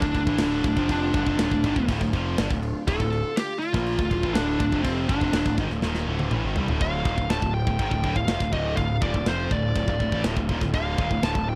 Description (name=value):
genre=heavy metal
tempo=122 BPM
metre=4/4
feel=straight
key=D phrygian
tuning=A4 = 440 Hz
part: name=high-gain lead guitar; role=melody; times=0.0-11.6 s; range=C4 to A5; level=-29 LUFS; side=equal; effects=distortion, slapback echo
part: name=rich symphonic string section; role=sustained chords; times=0.0-11.6 s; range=D3 to F4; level=-42 LUFS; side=equal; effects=none
part: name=scooped high-gain guitar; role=riff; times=0.0-11.6 s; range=D2 to Bb3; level=-34 LUFS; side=equal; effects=distortion
part: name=tight distorted guitar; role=riff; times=0.0-11.5 s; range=D2 to Bb3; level=-33 LUFS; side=equal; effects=distortion
part: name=fuzz picked electric bass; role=bass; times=0.0-11.6 s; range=D1 to C2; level=-30 LUFS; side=equal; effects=overdrive
part: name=tight metal drum kit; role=drums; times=0.0-11.5 s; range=crash cymbal, kick drum, snare drum, toms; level=-29 LUFS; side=equal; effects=none
room=little or no reverb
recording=dry, close 1970s-style studio recording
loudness=-24 LUFS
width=mono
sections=0.0-6.8 A section; 6.8-11.6 B section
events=drum fill 5.8-6.8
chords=0.0 Dm